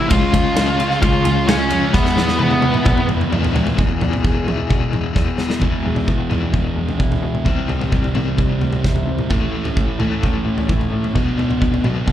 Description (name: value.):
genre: quiet-loud alternative rock.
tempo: 130 BPM.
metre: 4/4.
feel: straight.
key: unclear.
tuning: A4 = 440 Hz.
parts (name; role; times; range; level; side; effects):
octave-fuzz lead guitar; melody; 0.0-3.1 s; B3 to E#5; -19 LUFS; right 1 dB; distortion, slapback echo.
clear symphonic string section; sustained chords; 0.0-3.8 s; G#4 to C#6; -32 LUFS; left 1 dB; none.
crunchy overdriven guitar; riff; 0.0-12.1 s; E2 to E#4; -22 LUFS; left 9 dB; tremolo, slapback echo.
thick fuzz guitar; riff; 0.0-12.1 s; A2 to F#4; -23 LUFS; right 7 dB; distortion.
rich cello; bass; 0.0-12.1 s; C2 to E3; -24 LUFS; equal; none.
big rock drum kit; drums; 0.1-12.1 s; kick drum, ride cymbal, snare drum, toms; -20 LUFS; equal; none.
electric guitar through a small old amp; arpeggios; 3.8-12.1 s; A2 to G#4; -28 LUFS; left 1 dB; wide subtle chorus.
room: studio ambience.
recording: live gig heard through the venue's PA, club ambience.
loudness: -15 LUFS.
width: side -11 dB against mid.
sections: 0.0-3.8 A section; 3.8-5.6 B section; 5.6-12.1 C section.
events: drum fill 1.9-3.8, 5.2-5.6.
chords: 0.1 C#; 1.9 E; 7.5 C; 9.3 A; 11.2 Bm.